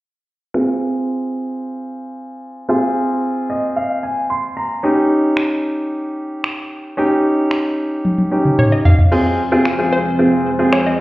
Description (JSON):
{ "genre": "dance-pop", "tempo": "112 BPM", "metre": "4/4", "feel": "straight", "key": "F minor", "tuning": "A4 = 436 Hz", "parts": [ { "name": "clear baby grand piano", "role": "accompaniment", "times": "0.5-10.9 s", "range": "C4 to C6", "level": "-16 LUFS", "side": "equal", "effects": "low-pass filter" }, { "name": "smooth R&B drum kit", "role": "drums", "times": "5.4-10.9 s", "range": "crash cymbal, finger snaps, toms", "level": "-16 LUFS", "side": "equal", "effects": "none" }, { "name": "hollow square pluck", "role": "melody", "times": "8.6-10.9 s", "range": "C5 to F5", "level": "-22 LUFS", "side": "equal", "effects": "chorus, tape echo" }, { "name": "string machine, cellos", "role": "sustained chords", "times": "9.1-11.0 s", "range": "F3 to C5", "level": "-22 LUFS", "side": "right 1 dB", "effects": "ensemble chorus" } ], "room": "moderate plate reverb, RT60 1.4 s, digital ambience", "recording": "heard muffled through a wall, stone room reverb, EQ", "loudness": "-15 LUFS", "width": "side -17 dB against mid", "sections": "0.5-9.1 A section; 9.1-11.0 B section", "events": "filter sweep on grand piano 0.5-9.1; grand piano fill 3.2-4.8; drum fill 8.0-9.1", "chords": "0.5 Fm; 4.8 Eb7; 8.9 N.C.; 9.1 Fm" }